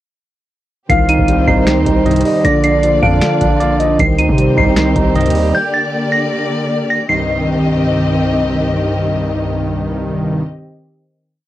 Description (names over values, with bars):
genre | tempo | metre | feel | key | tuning
hip hop, trap | 155 BPM | 4/4 | half-time | C minor | A4 = 440 Hz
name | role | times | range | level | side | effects
delicate synth tine bell | melody | 0.9-8.2 s | G6 to Eb7 | -19 LUFS | right 1 dB | chorus, low-pass filter, cassette tape
soft octave-layered synth lead | second line | 0.9-4.0 s | D5 to F5 | -17 LUFS | left 2 dB | chorus, phaser, cassette tape, analog delay
overdriven tine electric piano | accompaniment | 0.9-5.6 s | D3 to Eb5 | -15 LUFS | right 4 dB | low-pass filter, cassette tape
warm symphonic string section | sustained chords | 0.9-10.4 s | D3 to Eb5 | -18 LUFS | left 2 dB | cassette tape
long sustained 808-style bass | bass | 0.9-5.5 s | Bb1 to C3 | -17 LUFS | equal | none
booming analog drum machine | drums | 0.9-5.4 s | finger snaps, hi-hat, kick drum, snare drum | -18 LUFS | equal | cassette tape
big bright polysynth | stabs | 1.5-2.2, 4.6-10.4 s | C2 to Eb3 | -18 LUFS | equal | cassette tape
room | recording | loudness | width
light reverb | home recording on cassette | -12 LUFS | side -14 dB against mid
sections
0.9-7.1 hook; 7.1-10.2 final chord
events
none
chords
0.9 Cm; 2.4 Bb; 4.0 Cm; 5.5 Gm; 7.1 Cm